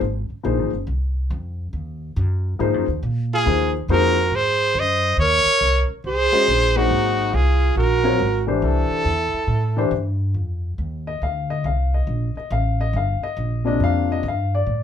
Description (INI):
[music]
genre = modal jazz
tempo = 139 BPM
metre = 4/4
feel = swing 65% on 8ths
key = Ab mixolydian, F mixolydian from 10.4 s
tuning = A4 = 439 Hz
[part]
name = upright bass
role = bass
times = 0.0-14.8 s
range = Gb1 to Bb2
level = -22 LUFS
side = equal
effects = none
[part]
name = warm grand piano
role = accompaniment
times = 0.4-14.8 s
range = C3 to F5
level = -23 LUFS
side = left 5 dB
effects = none
[part]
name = bright trumpet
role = melody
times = 3.3-9.9 s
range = Gb4 to Eb5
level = -20 LUFS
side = equal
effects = none
[part]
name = breathy alto saxophone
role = second line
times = 3.3-9.9 s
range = Eb4 to C5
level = -25 LUFS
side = right 6 dB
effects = none
[sound]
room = wet small room reverb, RT60 0.5 s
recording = band playing live in one room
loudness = -18 LUFS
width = side -8 dB against mid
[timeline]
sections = 0.0-10.4 A section; 10.4-14.8 B section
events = none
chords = 0.0 Ab13; 8.6 C69; 10.4 F7sus4; 13.8 Gmadd9/F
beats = | 0.01 0.44 0.87 1.30 | 1.73 2.16 2.60 3.03 | 3.46 3.89 4.32 4.75 | 5.18 5.61 6.04 6.47 | 6.90 7.33 7.77 8.20 | 8.63 9.06 9.49 9.92 | 10.35 10.78 11.21 11.65 | 12.08 12.51 12.94 13.38 | 13.81 14.24 14.67